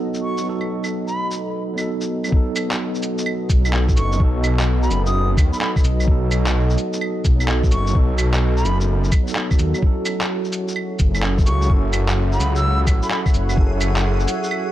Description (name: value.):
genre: future garage.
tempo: 128 BPM.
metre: 4/4.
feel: swing 66% on 16ths.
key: unclear.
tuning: A4 = 441 Hz.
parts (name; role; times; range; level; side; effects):
tine electric piano; accompaniment; 0.0-14.7 s; F#3 to A4; -26 LUFS; right 1 dB; medium stereo tremolo, sidechain pumping, analog delay.
deep dark ambient pad; sustained chords; 0.0-14.7 s; B3 to F#5; -28 LUFS; right 1 dB; chorus, built-in reverb, sidechain pumping.
electronic shaker, claves, cabasa and handclaps; drums; 0.1-14.6 s; none; -26 LUFS; equal; none.
bright reedy silver concert flute; melody; 0.2-13.2 s; B5 to E6; -27 LUFS; equal; analog delay.
electronic kick drum; drums; 2.3-13.7 s; none; -16 LUFS; equal; none.
swelling detuned saw bass; bass; 3.5-14.3 s; F#1 to D#2; -19 LUFS; equal; sidechain pumping.
backwards swelling texture; texture; 10.6-14.7 s; G#4; -34 LUFS; right 1 dB; built-in reverb.
room: light reverb.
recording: none.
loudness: -17 LUFS.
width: side -13 dB against mid.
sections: 0.0-2.3 A section; 2.3-14.7 B section.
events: filter sweep on tine electric piano 0.0-2.3.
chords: 0.0 B7; 9.8 F#m7.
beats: | 0.45 0.92 1.39 1.86 | 2.33 2.79 3.26 3.73 | 4.20 4.67 5.14 5.61 | 6.08 6.54 7.01 7.48 | 7.95 8.42 8.89 9.36 | 9.82 10.29 10.76 11.23 | 11.70 12.17 12.64 13.11 | 13.57 14.04 14.51.